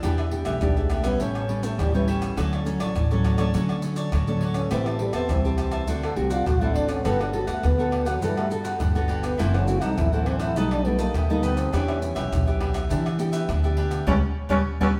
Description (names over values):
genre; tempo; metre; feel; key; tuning
samba and choro; 102 BPM; 4/4; straight; unclear; A4 = 441 Hz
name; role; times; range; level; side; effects
cavaquinho; accompaniment; 0.0-14.9 s; D4 to A5; -36 LUFS; equal; none
nylon-string guitar; accompaniment; 0.0-14.9 s; F#2 to B4; -30 LUFS; equal; none
upright bass; bass; 0.0-14.9 s; F#1 to E3; -30 LUFS; equal; none
maracas, surdo, pandeiro and tamborim; percussion; 0.0-14.9 s; none; -30 LUFS; equal; none
growling trombone; second line; 0.5-14.9 s; D3 to A4; -30 LUFS; equal; none
room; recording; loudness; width
wet stone room reverb, RT60 1.4 s; band playing live in one room; -24 LUFS; mono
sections
0.0-15.0 A section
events
trombone solo 0.0-15.0; band accent 14.1-15.0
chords
0.0 Em7; 1.2 A9; 2.4 Dmaj7; 4.7 Am9; 5.9 D7; 7.1 Gmaj9; 9.4 F#m7b5; 10.6 B7alt; 11.7 Em7; 14.1 Bsus2/C#